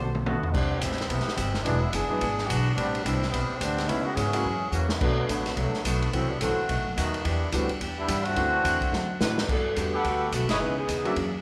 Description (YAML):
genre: jazz, big band swing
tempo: 215 BPM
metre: 4/4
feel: swing 60% on 8ths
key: G major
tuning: A4 = 441 Hz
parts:
  - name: warm saxophone section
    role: melody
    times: 0.0-0.1, 9.2-11.3 s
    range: D3 to C5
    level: -33 LUFS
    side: equal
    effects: none
  - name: hollow-body jazz guitar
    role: accompaniment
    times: 0.0-11.4 s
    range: F#2 to A4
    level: -39 LUFS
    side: equal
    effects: none
  - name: upright bass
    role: bass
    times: 0.0-11.4 s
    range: E1 to A2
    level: -32 LUFS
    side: equal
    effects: none
  - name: vintage drum kit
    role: drums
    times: 0.1-11.2 s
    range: crash cymbal, hi-hat, kick drum, ride cymbal, snare drum, toms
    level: -33 LUFS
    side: equal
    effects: none
  - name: clear trombone section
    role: second line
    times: 0.3-9.2 s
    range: B2 to G#4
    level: -31 LUFS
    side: equal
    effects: none
  - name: warm grand piano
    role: accompaniment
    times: 1.7-11.2 s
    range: E3 to A4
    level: -35 LUFS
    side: equal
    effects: none
  - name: warm trumpet section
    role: stabs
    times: 9.9-11.1 s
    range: E4 to F#5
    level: -32 LUFS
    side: equal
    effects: none
room: moderate recital hall reverb, RT60 1.5 s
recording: recorded in a church or concert hall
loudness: -27 LUFS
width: mono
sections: 0.5-9.5 A section; 9.5-11.4 B section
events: drum fill 0.0-0.5, 4.7, 8.9-9.5; trombone section solo 0.5-9.5; band accent 10.5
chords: 0.0 Gmaj9; 0.5 Cmaj7; 1.7 E7; 2.8 Am11; 3.9 C#m7; 4.5 F#7; 5.0 Bm7; 6.1 F#m7b5; 6.7 B7; 7.2 Em7; 8.4 D7; 9.5 Gmaj9; 10.6 C#m9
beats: 0.26 | 0.54 0.82 1.10 1.38 | 1.66 1.94 2.22 2.50 | 2.77 3.06 3.33 3.61 | 3.89 4.17 4.45 4.73 | 5.01 5.29 5.57 5.85 | 6.13 6.41 6.69 6.97 | 7.25 7.53 7.81 8.09 | 8.37 8.64 8.93 9.20 | 9.48 9.76 10.04 10.32 | 10.60 10.88 11.16